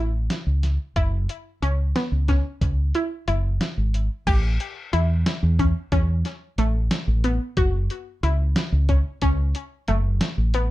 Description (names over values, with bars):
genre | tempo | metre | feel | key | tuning
progressive instrumental, band music in an uneven meter | 182 BPM (eighths) | 5/8 | straight | A mixolydian | A4 = 442 Hz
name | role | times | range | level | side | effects
analog pluck | arpeggios | 0.0-10.7 s | A3 to G4 | -28 LUFS | left 2 dB | chorus, ping-pong delay
woody fretless electric bass | bass | 0.0-10.7 s | F#1 to E2 | -21 LUFS | equal | none
lo-fi sampler-style drum kit | drums | 0.3-10.7 s | crash cymbal, hi-hat, kick drum, snare drum | -25 LUFS | equal | none
room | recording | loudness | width
light reverb | dark, warm production | -20 LUFS | side -16 dB against mid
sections
0.0-4.3 A section; 4.3-10.7 B section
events
none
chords
0.0 A; 1.0 F#5; 4.3 A; 7.6 F#m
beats
0.30 0.63 | 0.96 1.29 1.62 1.96 2.29 | 2.62 2.95 3.28 3.61 3.94 | 4.27 4.60 4.93 5.26 5.59 | 5.92 6.25 6.58 6.91 7.24 | 7.57 7.90 8.23 8.56 8.89 | 9.22 9.55 9.89 10.22 10.55